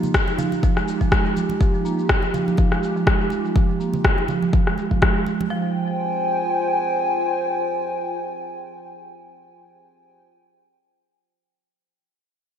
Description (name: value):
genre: afro house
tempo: 123 BPM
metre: 4/4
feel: swing 56% on 16ths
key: F minor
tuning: A4 = 440 Hz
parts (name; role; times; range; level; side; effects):
- dark analog pad; sustained chords; 0.0-10.2 s; Eb4 to Ab5; -25 LUFS; equal; chorus, sidechain pumping
- marimba with medium mallets; arpeggios; 0.0-5.7 s; F3 to Bb3; -25 LUFS; right 4 dB; sidechain pumping, low-pass filter, ping-pong delay
- electronic shaker and rim click; drums; 0.0-5.5 s; none; -24 LUFS; left 1 dB; low-pass filter on hats, low-pass filter on toms, low-pass filter on perc, low-pass filter on snare, low-pass filter on room, gated reverb
- congas; percussion; 0.0-5.5 s; none; -32 LUFS; right 4 dB; none
- electronic kick drum; drums; 0.1-5.1 s; none; -19 LUFS; left 1 dB; none
room: moderate lush hall reverb, RT60 2.1 s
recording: bright 1980s-style digital production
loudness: -18 LUFS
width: side -8 dB against mid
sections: 0.0-5.5 A section; 5.5-9.4 B section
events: filter sweep on marimba 0.0-5.5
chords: 0.0 F7(no3); 5.5 Fm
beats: 0.14 0.63 1.12 | 1.61 2.09 2.58 3.07 | 3.56 4.04 4.53 5.02 | 5.51 6.00 6.48 6.97 | 7.46 7.95 8.44 8.92